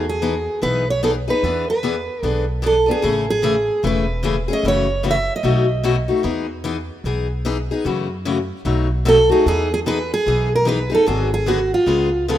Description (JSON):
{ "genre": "acoustic string swing (jazz manouche)", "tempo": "149 BPM", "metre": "4/4", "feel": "swing 62% on 8ths", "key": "E major", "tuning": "A4 = 443 Hz", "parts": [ { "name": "picked steel-string acoustic guitar", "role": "melody", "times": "0.0-6.1, 9.1-12.4 s", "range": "F4 to E5", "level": "-18 LUFS", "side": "right 2 dB", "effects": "none" }, { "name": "picked steel-string acoustic guitar", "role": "accompaniment", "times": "0.0-12.4 s", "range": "B2 to G#4", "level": "-21 LUFS", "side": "left 4 dB", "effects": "none" }, { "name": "upright bass", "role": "bass", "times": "0.0-12.4 s", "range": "E1 to F#2", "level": "-23 LUFS", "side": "equal", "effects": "none" } ], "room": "light reverb", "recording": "rough home demo mix", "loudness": "-16 LUFS", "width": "side -12 dB against mid", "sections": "0.0-12.4 A section", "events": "none", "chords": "0.0 Emaj7; 1.4 E7; 3.0 Amaj9; 4.6 F#m7; 5.4 B7; 6.2 Emaj7; 7.9 F#m7; 8.7 B7; 9.5 Emaj7; 11.1 G#m7b5; 11.9 C#7" }